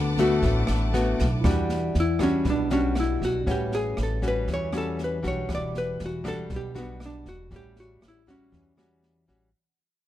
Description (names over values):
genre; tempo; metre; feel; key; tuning
bossa nova; 119 BPM; 4/4; straight; unclear; A4 = 441 Hz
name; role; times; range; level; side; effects
archtop guitar, miked and amplified; melody; 0.0-9.4 s; B3 to D5; -28 LUFS; equal; none
bright tine electric piano; accompaniment; 0.0-5.5 s; C#4 to F#5; -36 LUFS; right 3 dB; none
nylon-string guitar; accompaniment; 0.0-9.5 s; A2 to F#4; -28 LUFS; left 3 dB; none
rich symphonic string section; sustained chords; 0.0-1.4 s; B4 to D6; -36 LUFS; left 2 dB; none
upright bass; bass; 0.0-9.5 s; E1 to E2; -29 LUFS; equal; none
open jazz drum kit; drums; 0.2-9.3 s; kick drum, rim click, snare drum; -31 LUFS; equal; none
room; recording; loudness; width
light reverb; dark, warm production; -23 LUFS; side -13 dB against mid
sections
0.0-1.4 A section; 1.4-9.5 B section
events
fade-out 1.4-9.5; hollow-body jazz guitar solo 1.4-9.5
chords
0.0 D6; 1.4 Em9; 3.5 A13; 5.5 Em9; 7.5 A6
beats
0.43 0.94 | 1.44 1.95 2.45 2.96 | 3.46 3.97 4.47 4.98 | 5.49 5.99 6.50 7.00 | 7.51 8.01 8.52 9.02